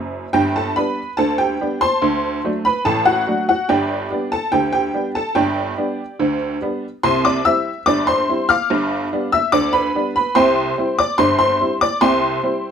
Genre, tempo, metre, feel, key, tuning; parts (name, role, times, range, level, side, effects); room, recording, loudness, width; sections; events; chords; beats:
ragtime piano; 72 BPM; 2/4; straight; G major; A4 = 440 Hz
honky-tonk upright piano; solo; 0.0-12.7 s; F#1 to F6; -16 LUFS; equal
light reverb; -16 LUFS; side -7 dB against mid
0.3-12.7 A section
honky-tonk piano fill 0.0-0.3
0.3 G; 2.0 D7; 3.7 G; 7.0 C; 8.7 G7; 10.4 C
| 0.34 1.18 | 2.02 2.86 | 3.69 4.53 | 5.36 6.19 | 7.02 7.86 | 8.70 9.53 | 10.36 11.19 | 12.02